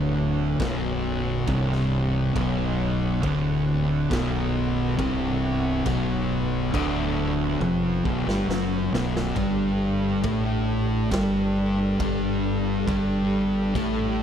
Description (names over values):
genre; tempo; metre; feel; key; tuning
stoner and doom metal; 68 BPM; 4/4; straight; B minor; A4 = 440 Hz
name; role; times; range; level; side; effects
ensemble organ-string; sustained chords; 0.0-14.2 s; G3 to F#5; -36 LUFS; right 3 dB; ensemble chorus
thick fuzz guitar; riff; 0.0-14.2 s; B1 to A3; -25 LUFS; left 6 dB; distortion
thick fuzz guitar; riff; 0.0-14.2 s; B1 to A3; -27 LUFS; right 11 dB; distortion
growling fingered electric bass; bass; 0.0-14.2 s; B0 to A1; -30 LUFS; equal; overdrive, tube saturation
raw garage drum kit; drums; 0.6-14.0 s; crash cymbal, kick drum, snare drum, toms; -32 LUFS; equal; none
room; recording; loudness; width
little or no reverb; none; -22 LUFS; side -8 dB against mid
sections
0.0-14.2 A section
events
drum fill 7.6-9.4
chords
0.0 Bm; 9.4 G5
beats
0.60 1.48 | 2.36 3.23 4.11 4.99 | 5.87 6.74 7.62 8.50 | 9.38 10.25 11.13 12.00 | 12.88 13.75